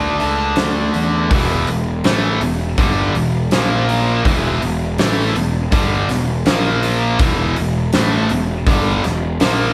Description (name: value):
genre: blues rock power trio and southern rock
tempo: 82 BPM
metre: 4/4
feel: straight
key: unclear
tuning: A4 = 440 Hz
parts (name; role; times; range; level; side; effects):
- overdriven slide guitar; melody; 0.0-0.6 s; E5 to A5; -25 LUFS; equal; none
- overdriven electric guitar; riff; 0.0-9.7 s; E2 to D4; -21 LUFS; equal; none
- fuzz picked electric bass; bass; 0.0-9.7 s; E1 to E2; -22 LUFS; equal; overdrive
- big rock drum kit; drums; 0.2-9.6 s; hi-hat, kick drum, snare drum; -22 LUFS; equal; none
room: moderate stone room reverb, RT60 1.4 s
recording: band playing live in one room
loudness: -17 LUFS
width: mono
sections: 0.0-1.3 A section; 1.3-9.7 B section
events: none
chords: 0.0 D5; 1.3 E5; 3.5 A#5; 4.3 E5; 6.5 A#5; 7.2 E5